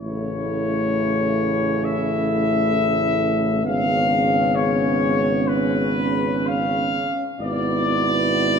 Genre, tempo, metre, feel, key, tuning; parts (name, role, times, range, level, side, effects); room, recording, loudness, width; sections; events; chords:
classical, hymn-like piece for brass band; free time; A4 = 440 Hz
mellow trumpet section; melody; 0.0-8.6 s; B4 to E#5; -22 LUFS; left 4 dB
mellow French horn section; second line; 0.0-8.6 s; C#4 to E4; -27 LUFS; right 8 dB
mellow euphonium; accompaniment; 0.0-8.6 s; A3 to B3; -26 LUFS; left 2 dB
warm trombone; accompaniment; 0.0-8.6 s; B2 to C#3; -28 LUFS; right 4 dB
mellow tuba; bass; 0.0-8.6 s; G#1 to A1; -26 LUFS; equal
wet scoring stage reverb, RT60 2.2 s; -18 LUFS; side -6 dB against mid
0.0-8.6 A section
0.0 A; 3.6 C#7/G#; 7.4 E7/G#